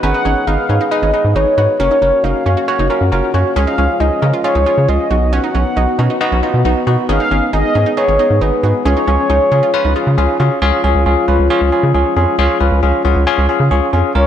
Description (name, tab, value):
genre	synth-pop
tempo	136 BPM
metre	4/4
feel	straight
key	unclear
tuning	A4 = 440 Hz
part	mellow horn-like synth lead	melody	0.0-10.4, 14.2-14.3 s	B4 to F#5	-17 LUFS	equal	chorus, analog delay
part	barky tine electric piano	accompaniment	0.0-14.3 s	B3 to C#6	-17 LUFS	left 2 dB	medium stereo tremolo, analog delay
part	dark French horn section	sustained chords	0.0-14.1 s	C#3 to G#4	-22 LUFS	equal	none
part	analog pluck	arpeggios	0.0-10.5 s	C#4 to F#4	-23 LUFS	right 5 dB	chorus, analog delay
part	rubbery square bass	bass	0.0-14.2 s	F#1 to C#3	-15 LUFS	equal	none
room	moderate echo chamber reverb, RT60 1.9 s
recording	echo-heavy mix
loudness	-11 LUFS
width	side -10 dB against mid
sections	0.0-10.6 A section; 10.6-14.2 B section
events	tine electric piano fill 12.8-14.2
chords	0.0 G#m; 1.8 F#; 3.6 C#; 5.1 B; 7.1 G#m; 8.9 C#